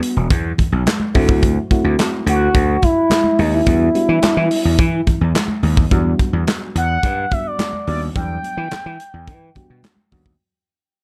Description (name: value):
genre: early-eighties boogie funk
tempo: 107 BPM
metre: 4/4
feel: straight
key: E minor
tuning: A4 = 440 Hz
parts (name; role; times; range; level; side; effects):
- expressive synth lead; melody; 0.0-9.8 s; B3 to G5; -21 LUFS; equal; chorus
- mellow FM electric piano; accompaniment; 0.0-10.3 s; F#3 to F#4; -25 LUFS; equal; chorus
- modern studio drum kit; drums; 0.0-10.4 s; handclaps, hi-hat, kick drum, snare drum; -21 LUFS; equal; none
- gritty slap bass; bass; 0.2-10.3 s; E1 to E3; -20 LUFS; equal; overdrive
- congas; percussion; 0.3-10.1 s; none; -27 LUFS; equal; none
room: light reverb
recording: dark, warm production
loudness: -17 LUFS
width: mono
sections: 0.0-5.9 A section; 5.9-10.4 B section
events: fade-out 5.9-10.4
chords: 0.0 Em7; 1.1 D9; 3.7 Em9